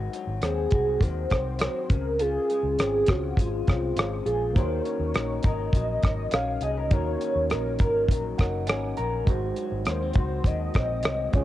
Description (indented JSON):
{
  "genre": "indie pop, bedroom pop",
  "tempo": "102 BPM",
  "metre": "4/4",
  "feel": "straight",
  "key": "unclear",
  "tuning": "A4 = 440 Hz",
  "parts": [
    { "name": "electric guitar through a small old amp", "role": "accompaniment", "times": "0.0-11.4 s", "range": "Ab2 to Bb4", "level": "-32 LUFS", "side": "left 8 dB", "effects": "lush chorus, vibrato effect, cassette tape" },
    { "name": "vintage muted fingered electric bass", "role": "bass", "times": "0.0-11.4 s", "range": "Gb1 to Eb2", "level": "-31 LUFS", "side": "equal", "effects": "none" },
    { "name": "damped 70s drum kit", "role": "drums", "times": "0.1-11.4 s", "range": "hi-hat, kick drum, rim click", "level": "-24 LUFS", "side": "equal", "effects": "none" },
    { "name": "warm velvety synth lead", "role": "melody", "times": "0.4-11.4 s", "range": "F4 to F5", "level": "-28 LUFS", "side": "right 1 dB", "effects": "ensemble chorus, tape echo" },
    { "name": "tine electric piano", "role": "accompaniment", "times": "4.5-11.4 s", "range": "Ab3 to Bb5", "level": "-35 LUFS", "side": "right 8 dB", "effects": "overdrive, fast stereo tremolo, cassette tape" }
  ],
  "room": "light reverb, small room ambience",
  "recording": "home recording on cassette",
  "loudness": "-23 LUFS",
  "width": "side -14 dB against mid",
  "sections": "0.0-11.4 A section",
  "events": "tine electric piano fill 8.1-9.3",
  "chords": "0.0 Ab7; 1.9 Dbmaj7; 4.6 Ebm7; 9.3 Ab7"
}